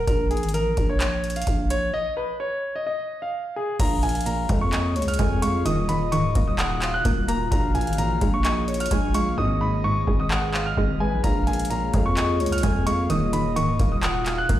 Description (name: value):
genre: hip hop, trap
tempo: 129 BPM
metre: 4/4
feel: half-time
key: Bb phrygian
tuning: A4 = 439 Hz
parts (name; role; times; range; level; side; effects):
- clear concert grand piano; melody; 0.0-14.6 s; Ab4 to Gb6; -27 LUFS; equal; low-pass filter, digital delay
- growling 808-style bass; bass; 0.0-14.6 s; Db1 to F2; -25 LUFS; equal; none
- booming analog drum machine; drums; 0.1-14.6 s; crash cymbal, handclaps, hi-hat, kick drum; -25 LUFS; equal; none
- breathy flute-like synth lead; second line; 3.8-14.5 s; Cb5 to Ab5; -32 LUFS; left 3 dB; chorus, digital delay
- string-like resonator pluck; accompaniment; 3.8-14.6 s; Ab2 to Bb3; -28 LUFS; right 2 dB; chorus, low-pass filter
- glassy FM pad; sustained chords; 4.1-14.6 s; Eb3 to Eb5; -31 LUFS; equal; ensemble chorus, built-in reverb
room: little or no reverb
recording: played on a big sound system in a bare room, large studio reverb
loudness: -21 LUFS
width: side -13 dB against mid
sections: 0.0-3.8 A section; 3.8-14.6 B section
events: break 1.9-3.8; hi-hats muted 9.4-11.2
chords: 0.1 Absus4 (rootless); 1.9 N.C.; 3.8 Bbm7; 5.7 Ebmadd9; 7.5 Bbm7; 9.4 Abm; 11.2 Bbm7; 13.1 Ebmadd9